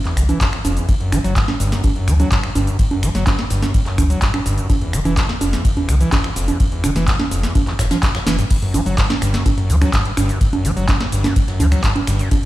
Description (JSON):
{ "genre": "acid house", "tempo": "126 BPM", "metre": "4/4", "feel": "straight", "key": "unclear", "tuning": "A4 = 440 Hz", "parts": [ { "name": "overdriven acid bass", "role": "riff", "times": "0.1-12.4 s", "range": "E2 to G3", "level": "-21 LUFS", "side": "equal", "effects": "sidechain pumping, ping-pong delay" }, { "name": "booming analog drum machine", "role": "drums", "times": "0.1-12.5 s", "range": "congas, crash cymbal, finger snaps, handclaps, hi-hat, ride cymbal, shaker, snare drum", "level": "-21 LUFS", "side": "right 2 dB", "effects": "none" }, { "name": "jazz brush drum kit", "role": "drums", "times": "0.1-12.4 s", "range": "hi-hat, snare drum", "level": "-34 LUFS", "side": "left 2 dB", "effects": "high-pass filter on hats, high-pass filter on snare, high-pass filter on room" }, { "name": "warm sub bass", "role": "bass", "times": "0.2-12.2 s", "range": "F1 to D2", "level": "-18 LUFS", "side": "equal", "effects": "sidechain pumping" }, { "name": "electronic kick drum", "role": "drums", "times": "0.2-12.4 s", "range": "none", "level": "-19 LUFS", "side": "equal", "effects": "none" } ], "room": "little or no reverb", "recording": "played on a big sound system in a bare room, stone room reverb", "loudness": "-15 LUFS", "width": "side -16 dB against mid", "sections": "0.0-8.5 A section; 8.5-12.5 A section", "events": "drop 0.0-8.5, 8.5-12.5; drum fill 8.3", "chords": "0.0 F5; 0.9 G5; 4.7 Fmaj7(no3); 8.5 G5", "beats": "0.41 | 0.89 1.36 1.84 2.31 | 2.79 3.27 3.74 4.22 | 4.70 5.17 5.65 6.12 | 6.60 7.08 7.55 8.03 | 8.51 8.98 9.46 9.93 | 10.41 10.89 11.36 11.84 | 12.31" }